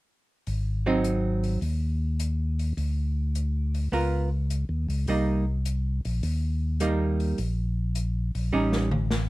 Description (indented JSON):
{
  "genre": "soul jazz organ trio",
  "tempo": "104 BPM",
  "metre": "4/4",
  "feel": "swing 69% on 8ths",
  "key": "unclear",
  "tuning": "A4 = 440 Hz",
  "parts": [
    { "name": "tonewheel organ", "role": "bass", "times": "0.5-9.3 s", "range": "Ab1 to Eb2", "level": "-26 LUFS", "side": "equal", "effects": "overdrive, slow rotary speaker" },
    { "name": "open jazz drum kit", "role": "drums", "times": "0.5-9.3 s", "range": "hi-hat, snare drum, toms", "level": "-34 LUFS", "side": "left 1 dB", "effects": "none" },
    { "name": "archtop guitar, miked and amplified", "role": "accompaniment", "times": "0.9-8.9 s", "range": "Gb3 to Bb4", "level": "-26 LUFS", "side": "right 2 dB", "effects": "none" }
  ],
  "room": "light reverb",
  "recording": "dark, warm production",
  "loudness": "-24 LUFS",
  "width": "side -19 dB against mid",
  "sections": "0.5-9.3 A section",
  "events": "drum fill 8.5-9.3",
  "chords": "0.5 Ab7; 2.8 N.C.; 3.9 Db13; 5.1 Cm7; 7.4 N.C.; 8.5 A7#11",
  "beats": "| 0.47 1.04 1.62 2.20 | 2.77 3.35 3.92 4.50 | 5.08 5.65 6.23 6.80 | 7.38 7.96 8.53 9.11"
}